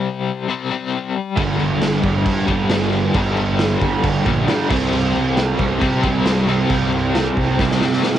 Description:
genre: quiet-loud alternative rock.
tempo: 135 BPM.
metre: 4/4.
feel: straight.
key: unclear.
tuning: A4 = 435 Hz.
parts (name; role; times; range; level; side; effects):
crunchy overdriven guitar; riff; 0.0-8.2 s; G2 to C4; -22 LUFS; left 7 dB; tremolo, cassette tape.
raw garage guitar; riff; 1.4-8.2 s; G2 to C4; -22 LUFS; right 8 dB; overdrive, phaser, cassette tape.
thick fuzz guitar; riff; 1.4-8.2 s; G2 to C4; -26 LUFS; right 1 dB; none.
fuzz picked electric bass; bass; 1.4-8.0 s; G1 to C3; -22 LUFS; right 1 dB; overdrive.
raw garage drum kit; drums; 1.4-8.2 s; crash cymbal, kick drum, snare drum; -21 LUFS; right 1 dB; none.
room: little or no reverb.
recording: home recording on cassette.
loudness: -16 LUFS.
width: side -11 dB against mid.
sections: 0.0-8.2 A section.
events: drum fill 7.6-8.2.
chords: 0.0 C5; 1.4 G5; 4.7 C5.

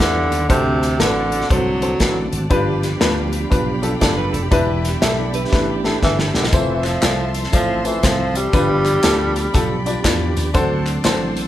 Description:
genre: uptempo gospel.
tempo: 119 BPM.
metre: 4/4.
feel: swing 64% on 8ths.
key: unclear.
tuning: A4 = 440 Hz.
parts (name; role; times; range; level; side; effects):
growling tenor saxophone; melody; 0.0-2.3, 6.0-9.9 s; C3 to G3; -20 LUFS; equal; none.
warm baby grand piano; accompaniment; 0.0-11.4 s; G2 to D5; -22 LUFS; left 2 dB; none.
bright studio string section; sustained chords; 0.0-11.5 s; D5 to C6; -31 LUFS; left 1 dB; none.
tonewheel organ; sustained chords; 0.0-11.5 s; D3 to E5; -27 LUFS; right 3 dB; fast rotary speaker, chorus vibrato.
slap bass; bass; 0.0-11.5 s; E1 to E2; -23 LUFS; equal; none.
modern studio drum kit; drums; 0.0-11.5 s; hi-hat, kick drum, snare drum; -20 LUFS; equal; none.
direct-recorded clean electric guitar; second line; 4.0-6.4 s; G4 to E5; -27 LUFS; right 5 dB; none.
tambourine and handclaps; percussion; 6.5-11.5 s; none; -29 LUFS; equal; none.
room: light reverb.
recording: band playing live in one room, lossy compression artefacts.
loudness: -15 LUFS.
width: side -12 dB against mid.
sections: 0.0-11.5 A section.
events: drum fill 5.5-6.5.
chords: 0.5 D7; 2.5 G7; 4.5 Em7; 6.5 Fmaj7; 8.5 G7; 10.5 D7.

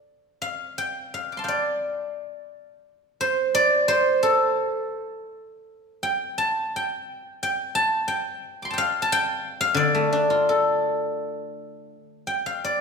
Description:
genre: chinese traditional, Chinese solo plucked strings.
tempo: 80-92 BPM.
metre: 2/4.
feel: rubato.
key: D yu mode.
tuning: A4 = 441 Hz.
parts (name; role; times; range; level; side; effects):
guzheng; solo; 0.0-12.8 s; D3 to D6; -22 LUFS; equal; none.
room: moderate concert hall reverb, RT60 1.7 s.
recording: recorded in a church or concert hall.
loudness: -21 LUFS.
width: side -5 dB against mid.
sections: 0.1-11.2 A section; 11.2-12.8 B section.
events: none.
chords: none.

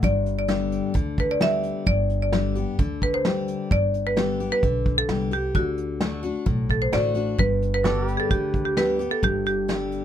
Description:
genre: honky-tonk and classic country.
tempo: 130 BPM.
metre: 4/4.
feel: straight.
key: G major.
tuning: A4 = 436 Hz.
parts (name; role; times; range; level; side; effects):
marimba with hard mallets; melody; 0.0-9.9 s; F#4 to E5; -24 LUFS; right 1 dB; none.
picked steel-string acoustic guitar; accompaniment; 0.0-10.0 s; G2 to G4; -27 LUFS; left 6 dB; none.
upright bass; bass; 0.0-10.0 s; G1 to D2; -28 LUFS; right 1 dB; none.
vintage brush drum kit; drums; 0.0-10.0 s; hi-hat, kick drum, snare drum; -26 LUFS; right 1 dB; none.
pedal steel guitar; sustained chords; 7.8-10.0 s; G4 to D5; -34 LUFS; right 3 dB; none.
room: light reverb.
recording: none.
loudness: -21 LUFS.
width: side -10 dB against mid.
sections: 0.0-7.4 A section; 7.4-10.0 A section.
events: none.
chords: 0.0 G; 5.6 D; 7.4 G.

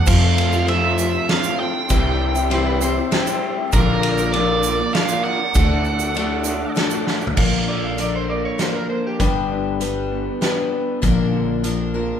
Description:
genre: folk rock and heartland rock.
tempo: 99 BPM.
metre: 3/4.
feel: straight.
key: unclear.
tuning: A4 = 440 Hz.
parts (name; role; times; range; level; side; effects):
nasal lead guitar with a parked wah; melody; 0.0-6.7 s; Bb4 to G5; -23 LUFS; right 6 dB; overdrive.
picked twelve-string acoustic guitar; accompaniment; 0.0-12.2 s; G2 to B4; -23 LUFS; left 6 dB; none.
tonewheel organ; sustained chords; 0.0-7.4 s; F4 to D6; -31 LUFS; right 2 dB; slow rotary speaker, chorus vibrato.
upright bass; bass; 0.0-12.1 s; G1 to F2; -23 LUFS; equal; none.
electric guitar through a small old amp; riff; 0.1-12.2 s; F2 to F#4; -25 LUFS; equal; none.
loose indie drum kit; drums; 0.1-11.8 s; crash cymbal, hi-hat, kick drum, ride cymbal, snare drum, toms; -23 LUFS; right 1 dB; none.
tube shaker; percussion; 0.1-7.3 s; none; -32 LUFS; right 9 dB; none.
electric slide guitar; second line; 2.5-3.6, 7.4-9.5 s; D4 to F5; -27 LUFS; right 1 dB; none.
room: moderate large studio reverb, RT60 1.3 s.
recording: band playing live in one room.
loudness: -17 LUFS.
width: side -8 dB against mid.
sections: 0.0-7.4 A section; 7.4-12.2 B section.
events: drum fill 7.1-7.4.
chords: 0.1 F; 1.9 C; 3.7 Bb; 5.5 D; 7.4 Bb; 9.2 G; 11.0 Bb.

